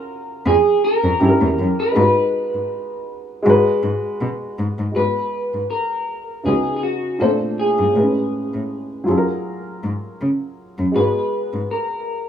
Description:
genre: R&B, neo-soul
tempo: 80 BPM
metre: 4/4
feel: swing 54% on 16ths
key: G# dorian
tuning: A4 = 436 Hz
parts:
  - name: electric guitar through a small old amp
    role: melody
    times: 0.0-12.3 s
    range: F#4 to B4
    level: -20 LUFS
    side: right 1 dB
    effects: lush chorus
  - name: warm upright piano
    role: accompaniment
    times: 0.0-12.3 s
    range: A2 to B#4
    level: -20 LUFS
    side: equal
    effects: none
  - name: dark cello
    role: bass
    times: 0.5-11.6 s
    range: C#2 to C#3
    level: -21 LUFS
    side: left 1 dB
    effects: none
room: little or no reverb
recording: rough home demo mix, small room ambience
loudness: -17 LUFS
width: side -9 dB against mid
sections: 0.0-4.9 A section; 4.9-12.3 B section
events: none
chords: 0.0 F#maj7; 1.2 Gdim7; 1.9 G#m7; 6.4 C#9sus4; 7.2 A#maj9; 7.9 Amaj9; 9.1 F#maj9; 10.9 G#m9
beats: 0.44 1.19 | 1.94 2.69 3.44 4.19 | 4.94 5.69 6.44 7.19 | 7.94 8.69 9.44 10.19 | 10.94 11.69

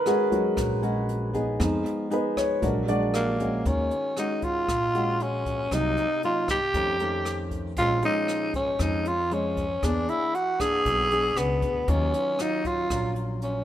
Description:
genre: bossa nova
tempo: 117 BPM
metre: 4/4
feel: straight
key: Eb minor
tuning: A4 = 440 Hz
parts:
  - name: nylon-string guitar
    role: accompaniment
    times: 0.0-13.6 s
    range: F2 to Ab4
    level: -31 LUFS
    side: left 1 dB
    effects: none
  - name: warm grand piano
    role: accompaniment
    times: 0.0-3.7 s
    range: Gb3 to D5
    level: -26 LUFS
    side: equal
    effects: none
  - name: jazz brush drum kit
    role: drums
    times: 0.1-13.5 s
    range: hi-hat, kick drum, rim click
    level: -35 LUFS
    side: equal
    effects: none
  - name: upright bass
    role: bass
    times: 0.6-13.6 s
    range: Bb1 to F2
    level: -29 LUFS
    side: equal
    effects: none
  - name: growling tenor saxophone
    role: melody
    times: 3.1-13.6 s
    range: Bb3 to G#4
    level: -25 LUFS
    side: equal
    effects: none
room: light reverb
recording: minimal, uncompressed stereo recording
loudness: -23 LUFS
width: side -11 dB against mid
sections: 0.0-3.7 A section; 3.7-13.6 B section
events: grand piano solo 0.0-3.7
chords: 0.0 Ebm7; 1.6 Fm7b5; 2.6 Bb7alt; 3.7 Ebm11; 5.7 Cm7b5; 6.7 F7b13; 7.8 Bbm7; 9.8 E7#11; 11.9 Ebm9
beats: 0.06 0.57 1.08 | 1.60 2.11 2.63 3.14 | 3.65 4.17 4.68 5.20 | 5.71 6.22 6.74 7.25 | 7.77 8.28 8.80 9.31 | 9.82 10.34 10.85 11.37 | 11.88 12.39 12.91 13.42

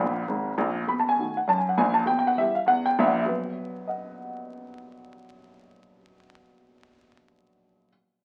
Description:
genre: jazz, stride piano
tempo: 201 BPM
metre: 4/4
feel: swing 59% on 8ths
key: B major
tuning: A4 = 440 Hz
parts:
  - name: warm upright piano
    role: solo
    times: 0.0-7.9 s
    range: G#1 to B5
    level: -26 LUFS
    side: equal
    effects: none
room: moderate large studio reverb, RT60 1.2 s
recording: very old 78 rpm record, vinyl crackle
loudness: -25 LUFS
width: mono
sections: 0.9-3.3 A section; 3.3-5.7 B section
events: upright piano fill 0.0-0.9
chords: 0.0 B5; 0.9 B7; 2.1 Em/B; 3.3 B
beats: 0.00 0.29 0.59 | 0.89 1.19 1.49 1.79 | 2.08 2.38 2.68 2.98 | 3.28 3.58 3.88 4.18 | 4.47 4.77 5.07 5.37

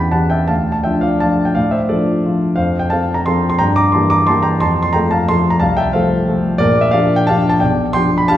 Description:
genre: classical, piano waltz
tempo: 164-189 BPM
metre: 3/4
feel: rubato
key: unclear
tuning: A4 = 440 Hz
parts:
  - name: warm concert grand piano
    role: solo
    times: 0.0-8.4 s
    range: Bb1 to D6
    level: -12 LUFS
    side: equal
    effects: none
room: wet recital hall reverb, RT60 1.6 s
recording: heard from further back in the room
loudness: -13 LUFS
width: side -12 dB against mid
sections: 0.0-8.4 A section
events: none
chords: 0.5 Dm; 2.6 F; 3.6 Edim/G; 4.6 F; 6.6 Gm7/Bb; 7.6 G7/B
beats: 0.14 | 0.50 0.85 1.21 | 1.56 1.90 2.24 | 2.58 2.91 3.26 | 3.60 3.94 4.28 | 4.61 4.95 5.29 | 5.62 5.95 6.29 | 6.62 6.94 7.28 | 7.61 7.95 8.30

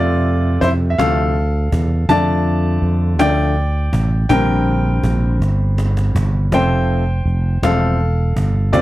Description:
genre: six-eight pop ballad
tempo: 54 BPM (dotted quarters)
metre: 6/8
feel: straight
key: F major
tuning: A4 = 440 Hz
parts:
  - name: clear grand piano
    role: accompaniment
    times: 0.0-8.8 s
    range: C3 to A5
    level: -18 LUFS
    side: left 1 dB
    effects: none
  - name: sustaining fretless electric bass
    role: bass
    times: 0.0-8.8 s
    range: E1 to F2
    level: -16 LUFS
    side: equal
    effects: none
  - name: cajon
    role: drums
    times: 0.3-8.8 s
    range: none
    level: -25 LUFS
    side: right 1 dB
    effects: none
room: studio ambience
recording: none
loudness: -14 LUFS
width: side -16 dB against mid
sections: 0.0-8.8 A section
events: grand piano solo 0.0-8.8; drum fill 5.4-6.5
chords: 0.0 F; 2.1 Dm/F; 4.3 Bb6; 6.5 F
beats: 0.99 | 2.09 3.19 | 4.30 5.41 | 6.52 7.63 | 8.73

